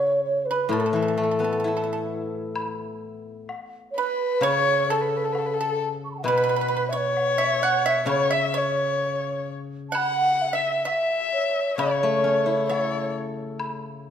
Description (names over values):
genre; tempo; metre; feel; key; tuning
chinese traditional, Chinese chamber ensemble; 65 BPM; 2/4; rubato; unclear; A4 = 440 Hz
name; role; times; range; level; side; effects
mellow hollow xiao; melody; 0.0-13.1 s; A4 to C#6; -25 LUFS; right 2 dB; none
pipa; second line; 0.0-13.1 s; A4 to F#5; -28 LUFS; right 5 dB; none
steel-string zither; accompaniment; 0.0-14.1 s; A2 to A4; -28 LUFS; left 4 dB; none
woodblock; percussion; 0.7-13.8 s; none; -34 LUFS; left 2 dB; none
dark erhu; second line; 4.0-13.1 s; A4 to F#5; -26 LUFS; left 7 dB; none
room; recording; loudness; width
moderate recital hall reverb, RT60 1.5 s; none; -21 LUFS; side -8 dB against mid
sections
0.0-2.6 A section; 2.6-14.1 B section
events
none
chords
none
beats
| 0.71 1.63 | 2.56 3.49 | 4.42 5.35 | 6.26 7.16 | 8.07 9.01 | 9.93 10.86 | 11.78 12.69 | 13.60